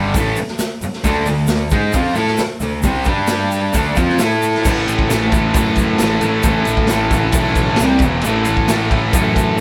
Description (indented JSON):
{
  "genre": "garage rock duo or trio",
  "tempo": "133 BPM",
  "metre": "4/4",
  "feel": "straight",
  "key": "unclear",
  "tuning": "A4 = 441 Hz",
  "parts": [
    { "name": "fuzz guitar", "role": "riff", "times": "0.0-9.6 s", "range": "E2 to A4", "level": "-18 LUFS", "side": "equal", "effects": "distortion" },
    { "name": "fuzz picked electric bass", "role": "bass", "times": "0.0-9.6 s", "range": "E1 to A2", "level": "-25 LUFS", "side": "equal", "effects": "overdrive, tube saturation" },
    { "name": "raw garage drum kit", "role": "drums", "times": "0.1-9.5 s", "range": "crash cymbal, hi-hat, kick drum, ride cymbal, snare drum", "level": "-22 LUFS", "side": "equal", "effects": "none" },
    { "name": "tube shaker", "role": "percussion", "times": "0.2-9.5 s", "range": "none", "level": "-32 LUFS", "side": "equal", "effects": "none" }
  ],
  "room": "moderate small room ambience, RT60 0.5 s",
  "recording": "band playing live in one room",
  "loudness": "-16 LUFS",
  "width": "mono",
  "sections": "0.0-4.6 A section; 4.6-9.6 B section",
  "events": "none",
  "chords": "0.0 G5; 1.0 D5; 3.1 G5; 3.7 D5; 4.2 A5; 7.8 C5; 8.0 E5; 8.2 A5",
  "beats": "0.14 0.59 | 1.04 1.50 1.95 2.40 | 2.85 3.30 3.75 4.20 | 4.65 5.10 5.55 6.00 | 6.45 6.90 7.35 7.80 | 8.25 8.70 9.14 9.60"
}